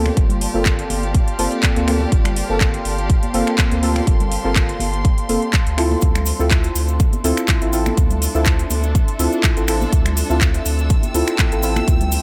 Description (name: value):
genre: deep house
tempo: 123 BPM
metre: 4/4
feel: swing 54% on 16ths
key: G dorian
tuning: A4 = 439 Hz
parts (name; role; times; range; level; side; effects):
- deep dark ambient pad; sustained chords; 0.1-12.2 s; E5 to C6; -33 LUFS; equal; chorus, built-in reverb, sidechain pumping
- deep mellow chord stab; stabs; 0.0-12.2 s; Bb3 to A4; -24 LUFS; equal; chorus, sidechain pumping, delay
- round analog bass; bass; 0.0-12.2 s; F1 to D2; -24 LUFS; equal; sidechain pumping
- rich chamber string section; texture; 0.0-12.2 s; D4 to E6; -33 LUFS; equal; sidechain pumping
- house drum kit; drums; 0.1-12.2 s; finger snaps, handclaps, hi-hat; -26 LUFS; equal; none
- congas; percussion; 0.1-12.1 s; none; -32 LUFS; equal; none
- electronic kick drum; drums; 0.2-12.0 s; none; -19 LUFS; equal; none
- cabasa; percussion; 6.0-12.2 s; none; -32 LUFS; equal; none
room: digital ambience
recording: none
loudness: -18 LUFS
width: mono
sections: 0.0-12.2 A section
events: none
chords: 0.0 Gm11; 5.8 Dm9